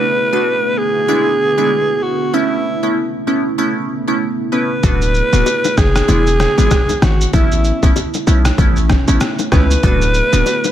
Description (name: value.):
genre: afrobeats.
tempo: 96 BPM.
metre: 4/4.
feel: swing 58% on 16ths.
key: A major.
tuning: A4 = 439 Hz.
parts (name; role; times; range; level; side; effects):
breathy alto saxophone; melody; 0.0-10.7 s; E4 to B4; -16 LUFS; right 1 dB; digital delay.
glassy wavetable pluck; accompaniment; 0.0-10.5 s; G#3 to F#4; -19 LUFS; right 1 dB; chorus.
deep dark ambient pad; sustained chords; 0.0-10.7 s; C#3 to F#4; -23 LUFS; right 1 dB; chorus, built-in reverb, sidechain pumping.
hard-hitting 808-style bass; bass; 4.8-10.4 s; D1 to C#2; -14 LUFS; equal; none.
trip hop sampler-style drum kit; drums; 4.8-10.7 s; kick drum, rim click, shaker; -17 LUFS; equal; overdrive.
congas and bongos; percussion; 4.8-10.7 s; none; -24 LUFS; left 7 dB; none.
room: digital ambience.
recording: none.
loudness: -12 LUFS.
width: side -11 dB against mid.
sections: 0.0-10.7 A section.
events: none.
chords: 0.0 D6; 1.1 E7; 2.3 Aadd9; 4.8 D6; 6.1 E7; 7.3 Aadd9; 9.8 D6.